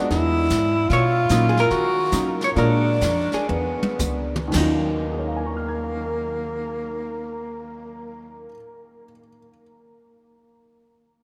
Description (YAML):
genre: jazz, small-group swing and bop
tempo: 106-151 BPM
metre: 4/4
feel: swing 66% on 8ths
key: Eb minor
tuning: A4 = 440 Hz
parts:
  - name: breathy tenor saxophone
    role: second line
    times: 0.0-8.5 s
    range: Bb3 to Gb4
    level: -26 LUFS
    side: equal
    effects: none
  - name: dark baby grand piano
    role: accompaniment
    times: 0.0-9.6 s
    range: Eb2 to Ab6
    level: -31 LUFS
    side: equal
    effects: none
  - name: upright bass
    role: bass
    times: 0.1-8.5 s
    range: Db2 to Eb3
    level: -27 LUFS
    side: equal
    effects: none
  - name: jazz brush drum kit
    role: drums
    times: 0.1-4.7 s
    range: brushed snare drum, crash cymbal, hi-hat, kick drum, snare drum, toms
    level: -33 LUFS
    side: equal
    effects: none
  - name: archtop guitar, miked and amplified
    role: melody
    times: 0.9-8.5 s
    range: Eb4 to C#5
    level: -30 LUFS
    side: equal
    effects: none
room: wet cathedral reverb, RT60 6.4 s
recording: in a vast, echoing space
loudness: -22 LUFS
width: mono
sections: 0.0-4.5 A section; 4.5-9.1 B section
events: slowing down 0.9-4.5; drum fill 3.5-4.5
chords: 0.1 E7; 0.9 Bmaj9; 1.7 Ebm7; 2.6 Bb7; 3.5 E; 4.5 Ebm9